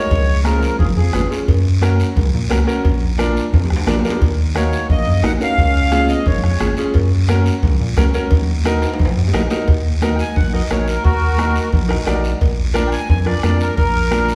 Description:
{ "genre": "latin, cumbia", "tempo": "176 BPM", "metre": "4/4", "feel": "straight", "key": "Eb minor, Eb harmonic minor from 9.7 s", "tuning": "A4 = 442 Hz", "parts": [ { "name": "accordion", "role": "melody", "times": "0.0-1.3, 4.6-6.7, 10.2-14.3 s", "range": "Gb4 to Ab5", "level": "-24 LUFS", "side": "equal", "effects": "none" }, { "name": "mellow trombone", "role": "second line", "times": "0.0-1.3, 4.6-6.7 s", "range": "F3 to Eb4", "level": "-29 LUFS", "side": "equal", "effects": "none" }, { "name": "clear upright piano", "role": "accompaniment", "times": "0.0-14.3 s", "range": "Db4 to D5", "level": "-25 LUFS", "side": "equal", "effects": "none" }, { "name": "rubbery square bass", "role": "bass", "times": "0.1-14.3 s", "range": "Ab1 to Bb2", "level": "-20 LUFS", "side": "equal", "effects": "none" }, { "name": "bombo", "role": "percussion", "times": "0.1-14.3 s", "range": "none", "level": "-22 LUFS", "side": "equal", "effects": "none" }, { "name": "congas", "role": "percussion", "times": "0.1-14.3 s", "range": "none", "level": "-27 LUFS", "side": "equal", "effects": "none" }, { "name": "cowbell and timbales", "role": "percussion", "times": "0.1-13.9 s", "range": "none", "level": "-31 LUFS", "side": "equal", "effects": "none" }, { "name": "guiro", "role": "percussion", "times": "0.1-14.3 s", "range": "none", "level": "-34 LUFS", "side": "equal", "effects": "none" } ], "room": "wet recital hall reverb, RT60 1.4 s", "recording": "recorded in a church or concert hall", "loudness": "-16 LUFS", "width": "mono", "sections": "0.0-9.7 A section; 9.7-14.3 B section", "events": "drum fill 3.5-4.2, 8.8-9.7; accordion solo 9.7-14.3; upright piano fill 11.9-12.4", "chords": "0.1 Db; 1.5 Gb; 2.8 Bb; 4.2 Ebm; 5.6 Db; 6.9 Gb; 8.3 Ebm; 12.4 Bb" }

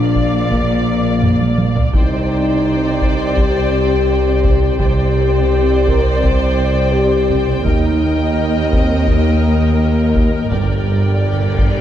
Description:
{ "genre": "cinematic, epic orchestral film score", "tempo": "84 BPM", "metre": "4/4", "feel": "straight", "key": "C minor", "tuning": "A4 = 441 Hz", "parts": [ { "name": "dark symphonic violin section", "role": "melody", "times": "0.0-11.8 s", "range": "F5 to G5", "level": "-29 LUFS", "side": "left 2 dB", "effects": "none" }, { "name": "warm symphonic violin section", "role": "second line", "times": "0.0-11.8 s", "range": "D5 to Eb5", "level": "-24 LUFS", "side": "left 3 dB", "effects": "none" }, { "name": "rich symphonic viola section", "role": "accompaniment", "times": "0.0-11.8 s", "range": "Bb4 to D5", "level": "-27 LUFS", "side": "equal", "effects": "none" }, { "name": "mellow French horn section", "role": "sustained chords", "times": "0.0-11.8 s", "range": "G3 to C5", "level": "-18 LUFS", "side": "left 4 dB", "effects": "none" }, { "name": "dark symphonic double bass section", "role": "bass", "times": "0.0-11.8 s", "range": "G1 to Eb2", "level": "-19 LUFS", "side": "right 2 dB", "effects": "none" }, { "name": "warm symphonic cello section", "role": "bass", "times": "0.0-11.8 s", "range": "Eb2 to C3", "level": "-23 LUFS", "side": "right 4 dB", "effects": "none" }, { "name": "warm tuba", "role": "bass", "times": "0.0-11.8 s", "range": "G1 to Eb2", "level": "-22 LUFS", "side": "right 3 dB", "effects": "none" }, { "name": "taiko ensemble", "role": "drums", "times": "0.2-11.8 s", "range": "none", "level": "-19 LUFS", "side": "equal", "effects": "none" }, { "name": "timpani", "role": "percussion", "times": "10.5-11.8 s", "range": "G2", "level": "-22 LUFS", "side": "equal", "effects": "none" }, { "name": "cymbal swell", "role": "sound effects", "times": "11.3-11.8 s", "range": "none", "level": "-34 LUFS", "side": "left 1 dB", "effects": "none" } ], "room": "wet concert hall reverb, RT60 2.1 s", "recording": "dark, warm production", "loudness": "-12 LUFS", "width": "side -10 dB against mid", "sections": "0.0-11.8 A section", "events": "drum fill 1.2-1.9; timpani fill 10.5-11.8; cymbal swell 11.3-11.8", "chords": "0.0 Bb; 1.9 Cmadd9; 7.7 Eb; 10.5 Gm" }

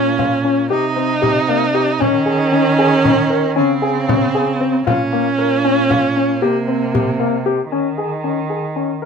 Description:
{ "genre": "contemporary instrumental, chamber music in an uneven meter", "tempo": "231 BPM (eighths)", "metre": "11/8", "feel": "straight", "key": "Eb mixolydian", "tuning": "A4 = 440 Hz", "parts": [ { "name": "rich viola", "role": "second line", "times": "0.0-7.5 s", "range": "Bb3 to Eb4", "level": "-17 LUFS", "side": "right 4 dB", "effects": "none" }, { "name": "warm concert grand piano", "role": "arpeggios", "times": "0.0-9.1 s", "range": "Bb3 to Bb4", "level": "-18 LUFS", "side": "left 5 dB", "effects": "none" }, { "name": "muted cello", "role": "bass", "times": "0.0-9.1 s", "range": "Bb2 to Eb3", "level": "-22 LUFS", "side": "right 4 dB", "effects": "none" }, { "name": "frame drum", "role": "percussion", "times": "0.2-7.3 s", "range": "none", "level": "-22 LUFS", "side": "left 2 dB", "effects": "none" } ], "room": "light reverb", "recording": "minimal, uncompressed stereo recording", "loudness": "-14 LUFS", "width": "side -6 dB against mid", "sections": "0.0-7.7 A section; 7.7-9.1 B section", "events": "none", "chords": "0.0 Bbm; 0.7 Cm; 2.0 Eb7sus4; 3.6 Db5; 4.9 Bbm; 6.4 C5; 7.7 Eb7sus4" }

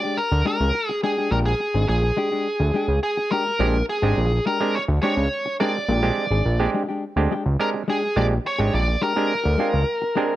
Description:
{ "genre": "funk", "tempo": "105 BPM", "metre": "4/4", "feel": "straight", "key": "Bb mixolydian", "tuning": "A4 = 440 Hz", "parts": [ { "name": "nasal lead guitar with a parked wah", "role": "melody", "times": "0.0-10.4 s", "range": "Ab4 to D5", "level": "-24 LUFS", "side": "equal", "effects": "overdrive, plate reverb" }, { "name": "hollow-body jazz guitar", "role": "accompaniment", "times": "0.0-10.3 s", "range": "Ab3 to Ab4", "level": "-27 LUFS", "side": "left 4 dB", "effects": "plate reverb" }, { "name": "fat analog bass", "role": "bass", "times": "0.3-9.8 s", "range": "Ab1 to D2", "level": "-20 LUFS", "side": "equal", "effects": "none" }, { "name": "mellow clav", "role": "stabs", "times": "3.6-10.3 s", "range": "Ab3 to Bb4", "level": "-26 LUFS", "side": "right 5 dB", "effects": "plate reverb" } ], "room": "light reverb", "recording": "none", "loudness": "-19 LUFS", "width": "side -14 dB against mid", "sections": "0.0-10.4 A section", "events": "none", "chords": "0.0 Bb13" }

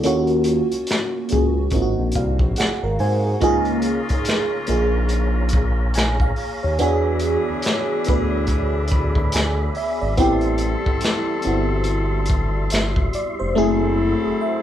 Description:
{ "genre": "R&B, neo-soul", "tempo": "71 BPM", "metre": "4/4", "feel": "swing 60% on 16ths", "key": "unclear", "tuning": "A4 = 440 Hz", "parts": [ { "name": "FM electric piano with soft pad layer", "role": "accompaniment", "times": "0.0-14.6 s", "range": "A3 to B5", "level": "-21 LUFS", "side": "right 1 dB", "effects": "chorus, phaser" }, { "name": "crunchy breakbeat drum kit", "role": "drums", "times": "0.0-13.4 s", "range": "finger snaps, hi-hat, kick drum, snare drum", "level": "-23 LUFS", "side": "equal", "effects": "none" }, { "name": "smooth synth bass", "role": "bass", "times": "0.1-14.3 s", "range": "E1 to G#2", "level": "-22 LUFS", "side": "equal", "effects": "none" }, { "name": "mellow tonewheel organ", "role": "sustained chords", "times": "3.4-14.6 s", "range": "G3 to C6", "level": "-30 LUFS", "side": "equal", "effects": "slow rotary speaker, chorus vibrato" }, { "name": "warm horn section", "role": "stabs", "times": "3.4-14.6 s", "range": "C#3 to A4", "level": "-30 LUFS", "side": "left 4 dB", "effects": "none" } ], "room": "moderate large studio reverb, RT60 0.9 s", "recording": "band playing live in one room", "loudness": "-18 LUFS", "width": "side -11 dB against mid", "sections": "0.0-14.6 A section", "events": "FM electric piano fill 1.7-3.4, 8.5-10.2", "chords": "0.0 D#m7; 1.7 G#7; 3.4 C#6; 6.8 E7; 10.2 Am7; 13.6 F#m7b5" }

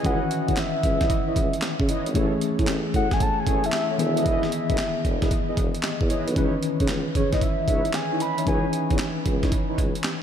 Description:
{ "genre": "R&B, new jack swing", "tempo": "114 BPM", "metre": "4/4", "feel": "swing 66% on 16ths", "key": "C# minor", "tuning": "A4 = 438 Hz", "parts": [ { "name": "soft octave-layered synth lead", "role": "melody", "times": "0.0-9.0 s", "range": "C#5 to B5", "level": "-28 LUFS", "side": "left 1 dB", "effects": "chorus, ping-pong delay" }, { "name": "mellow tine electric piano", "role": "accompaniment", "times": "0.0-10.2 s", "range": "D#3 to D#5", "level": "-28 LUFS", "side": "left 3 dB", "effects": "medium stereo tremolo" }, { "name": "mellow synth brass", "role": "stabs", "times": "0.0-9.8 s", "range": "D#4 to D#5", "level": "-31 LUFS", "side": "right 2 dB", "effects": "chorus, ping-pong delay" }, { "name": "warm tuba", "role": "bass", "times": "0.0-9.9 s", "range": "E1 to C#3", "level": "-29 LUFS", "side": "equal", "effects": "none" }, { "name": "breakbeat sampler-style drum kit", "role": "drums", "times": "0.0-10.2 s", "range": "handclaps, hi-hat, kick drum, snare drum", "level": "-25 LUFS", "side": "right 1 dB", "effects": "none" } ], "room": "moderate cathedral reverb, RT60 5.3 s", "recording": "dreamy mix soaked in reverb", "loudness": "-21 LUFS", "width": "side -9 dB against mid", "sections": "0.0-10.2 A section", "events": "none", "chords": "0.0 C#m9; 2.2 Amaj7; 4.0 Emaj7; 6.4 C#m9" }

